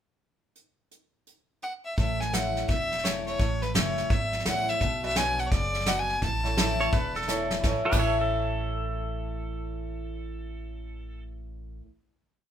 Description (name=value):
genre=honky-tonk and classic country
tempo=170 BPM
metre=4/4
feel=swing 63% on 8ths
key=A major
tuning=A4 = 444 Hz
part: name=soft brush drum kit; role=drums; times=0.6-8.0 s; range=crash cymbal, hi-hat, kick drum, snare drum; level=-29 LUFS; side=equal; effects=none
part: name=clear fiddle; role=melody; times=1.6-7.3 s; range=B4 to A5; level=-29 LUFS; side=equal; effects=none
part: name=picked acoustic archtop guitar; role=accompaniment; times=2.0-11.8 s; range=E2 to F#4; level=-33 LUFS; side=left 3 dB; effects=none
part: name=upright bass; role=bass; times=2.0-11.8 s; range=E1 to B1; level=-33 LUFS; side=right 1 dB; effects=none
part: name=bright upright piano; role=accompaniment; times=5.0-11.8 s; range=E4 to D5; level=-35 LUFS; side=right 5 dB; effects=none
part: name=pedal steel guitar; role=second line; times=6.8-11.2 s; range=G4 to C#5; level=-32 LUFS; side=right 2 dB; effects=none
room=moderate studio reverb, RT60 0.7 s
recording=minimal, uncompressed stereo recording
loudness=-25 LUFS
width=side -9 dB against mid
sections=0.6-2.0 pickup bar; 2.0-7.6 A section; 7.6-10.5 final chord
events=drum fill 7.3-7.6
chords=0.6 N.C.; 2.0 A; 4.8 Bm; 6.2 A